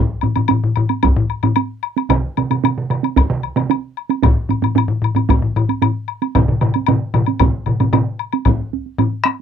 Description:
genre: japanese traditional, taiko drum ensemble.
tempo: 113 BPM.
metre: 4/4.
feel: straight.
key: none.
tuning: none.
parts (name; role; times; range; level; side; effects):
solo taiko drums; percussion; 0.2-9.4 s; none; -19 LUFS; right 15 dB; none.
solo taiko drums; percussion; 0.2-9.4 s; none; -18 LUFS; left 4 dB; none.
woodblock; percussion; 0.2-9.4 s; none; -22 LUFS; left 16 dB; none.
taiko ensemble; percussion; 1.0-8.6 s; none; -17 LUFS; equal; none.
solo taiko drums; percussion; 2.1-8.1 s; none; -20 LUFS; right 3 dB; none.
room: moderate booth ambience, RT60 0.2 s.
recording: dry, close 1970s-style studio recording.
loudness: -15 LUFS.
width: side -8 dB against mid.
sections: 0.0-8.5 A section.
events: none.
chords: none.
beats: 0.50 1.03 1.57 | 2.10 2.64 3.17 3.70 | 4.24 4.77 5.29 5.82 | 6.35 6.88 7.41 7.93 | 8.46 8.98.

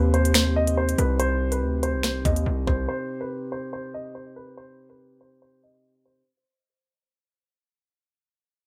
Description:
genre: hip hop, drill.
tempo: 142 BPM.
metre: 4/4.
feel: half-time.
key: C harmonic minor.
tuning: A4 = 440 Hz.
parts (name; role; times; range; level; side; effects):
dark baby grand piano; melody; 0.0-6.2 s; B4 to Eb5; -31 LUFS; equal; low-pass filter, tape echo.
pipe organ, stopped flute; sustained chords; 0.0-6.2 s; C3 to G4; -34 LUFS; equal; low-pass filter.
distorted 808-style bass; bass; 0.0-2.9 s; C2 to Eb2; -26 LUFS; equal; distortion.
drill drum kit; drums; 0.1-2.8 s; finger snaps, hi-hat, kick drum, snare drum; -26 LUFS; equal; none.
room: moderate studio reverb, RT60 0.5 s.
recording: none.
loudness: -24 LUFS.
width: mono.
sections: 0.0-6.3 A section.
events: fade-out 0.0-6.3; filter sweep 0.0-6.3.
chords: 0.0 Cm.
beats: 0.35 0.77 | 1.20 1.62 2.04 2.46 | 2.89 3.31 3.73 4.15 | 4.58 5.00 5.42 5.84.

